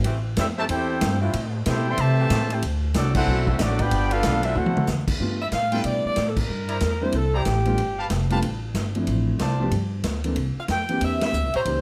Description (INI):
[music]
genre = jazz, big band swing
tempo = 186 BPM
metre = 4/4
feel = swing 63% on 8ths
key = unclear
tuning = A4 = 440 Hz
[part]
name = clear saxophone section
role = sustained chords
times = 0.0-4.9 s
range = E3 to G4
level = -35 LUFS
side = equal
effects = none
[part]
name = upright bass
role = bass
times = 0.0-11.8 s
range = F1 to C3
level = -27 LUFS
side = equal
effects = none
[part]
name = swinging big-band drum kit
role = drums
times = 0.0-11.7 s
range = crash cymbal, hi-hat, kick drum, ride cymbal, snare drum, toms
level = -31 LUFS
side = equal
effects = none
[part]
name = clear trumpet section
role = melody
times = 0.4-4.9 s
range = C4 to C6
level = -28 LUFS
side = equal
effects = none
[part]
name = mellow trombone section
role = second line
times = 0.4-4.9 s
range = C3 to G4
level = -31 LUFS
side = equal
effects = none
[part]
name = warm concert grand piano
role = accompaniment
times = 5.2-11.8 s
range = E3 to A4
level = -30 LUFS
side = equal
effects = none
[part]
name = clear saxophone section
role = melody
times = 5.4-8.3, 10.6-11.8 s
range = G4 to G5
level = -28 LUFS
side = equal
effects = none
[part]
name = clear trumpet section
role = stabs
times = 5.7-11.6 s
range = E4 to Bb5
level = -34 LUFS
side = equal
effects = none
[sound]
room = light reverb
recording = none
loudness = -23 LUFS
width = mono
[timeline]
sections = 0.0-5.2 A section; 5.2-11.8 B section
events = band accent 3.1, 6.3, 11.2; drum fill 4.6-4.9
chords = 0.1 Am7; 2.6 D9; 3.9 G9; 4.6 D9; 5.2 G9; 6.5 C9; 7.8 G9; 9.1 Dm7; 9.7 Gsus2; 10.4 C9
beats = | 0.06 0.38 0.70 1.02 | 1.34 1.66 1.99 2.31 | 2.63 2.95 3.27 3.59 | 3.92 4.24 4.56 4.88 | 5.20 5.53 5.85 6.17 | 6.49 6.82 7.14 7.46 | 7.78 8.11 8.43 8.75 | 9.07 9.39 9.72 10.04 | 10.36 10.69 11.01 11.33 | 11.65